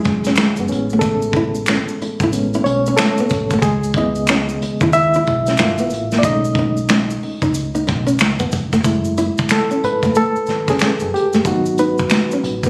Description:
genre	R&B, neo-soul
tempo	92 BPM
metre	4/4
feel	swing 63% on 16ths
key	F# dorian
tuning	A4 = 440 Hz
part	nylon-string guitar	second line	0.0-12.7 s	A3 to E4	-22 LUFS	equal	none
part	bright reed electric piano	accompaniment	0.0-12.7 s	C#3 to E5	-21 LUFS	equal	fast tremolo
part	vintage brush drum kit	drums	0.0-12.7 s	finger snaps, hi-hat, kick drum, snare drum	-22 LUFS	equal	none
part	deep dub fingered electric bass	bass	0.1-12.7 s	E1 to D#2	-27 LUFS	equal	none
part	maracas and finger snaps	percussion	0.2-12.7 s	none	-33 LUFS	equal	none
room	moderate studio ambience, RT60 0.5 s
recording	recorded on a phone in the room, studio reverb, compression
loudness	-17 LUFS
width	mono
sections	0.0-8.8 A section; 8.8-12.7 B section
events	reed electric piano solo 0.0-8.8, 8.8-12.7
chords	0.0 E69; 0.7 Amaj9; 3.6 C#m9; 5.6 Gm7; 6.2 B13; 8.8 F#m9; 11.5 G#m7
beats	0.37 | 1.02 1.67 2.32 2.98 | 3.63 4.28 4.93 5.58 | 6.24 6.89 7.54 8.19 | 8.84 9.50 10.15 10.80 | 11.45 12.11

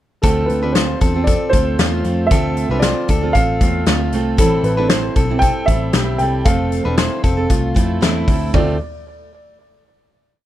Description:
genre	jangly indie pop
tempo	116 BPM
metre	4/4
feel	straight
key	D dorian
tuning	A4 = 441 Hz
part	dark upright piano	melody	0.2-8.8 s	A4 to G5	-22 LUFS	right 1 dB	tape echo
part	picked steel-string acoustic guitar	accompaniment	0.2-8.8 s	A2 to A4	-22 LUFS	right 5 dB	none
part	direct-recorded clean electric guitar	arpeggios	0.2-8.8 s	A3 to C5	-23 LUFS	left 4 dB	warbly pitch drift, tape echo
part	vintage muted picked electric bass	bass	0.2-8.8 s	E1 to F2	-21 LUFS	equal	none
part	big rock drum kit	drums	0.2-8.7 s	hi-hat, kick drum, snare drum, toms	-18 LUFS	equal	none
room	little or no reverb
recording	none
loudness	-14 LUFS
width	side -13 dB against mid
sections	0.2-8.5 verse; 8.5-10.5 final chord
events	none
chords	0.2 Dm7; 4.4 Am7; 6.5 Fmaj7; 8.5 Dm7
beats	| 0.24 0.76 1.28 1.80 | 2.32 2.83 3.35 3.87 | 4.39 4.91 5.42 5.94 | 6.46 6.98 7.50 8.02 | 8.54

